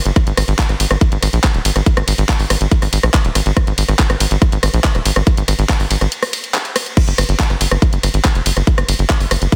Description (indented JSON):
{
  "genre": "psychedelic trance",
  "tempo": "141 BPM",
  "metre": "4/4",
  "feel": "straight",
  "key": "unclear",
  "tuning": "A4 = 439 Hz",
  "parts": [
    { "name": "tight sequencer bass", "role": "bass", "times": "0.1-9.5 s", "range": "Eb1 to Bb1", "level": "-18 LUFS", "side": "equal", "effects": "none" },
    { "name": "garage drum kit", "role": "drums", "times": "0.1-9.6 s", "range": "crash cymbal, handclaps, hi-hat, ride cymbal, rim click", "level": "-21 LUFS", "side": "equal", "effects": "overdrive, studio reverb" },
    { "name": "electronic kick drum", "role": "drums", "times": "0.2-9.6 s", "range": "none", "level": "-16 LUFS", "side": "equal", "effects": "overdrive, studio reverb" }
  ],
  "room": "digital ambience",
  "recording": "dense, heavily limited modern master",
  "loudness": "-15 LUFS",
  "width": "mono",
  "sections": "0.0-9.6 A section",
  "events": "break 6.1-7.0",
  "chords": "none",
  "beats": "| 0.16 0.59 1.01 1.44 | 1.86 2.29 2.71 3.14 | 3.57 3.99 4.42 4.84 | 5.27 5.69 6.12 6.54 | 6.97 7.39 7.82 8.25 | 8.67 9.10 9.52"
}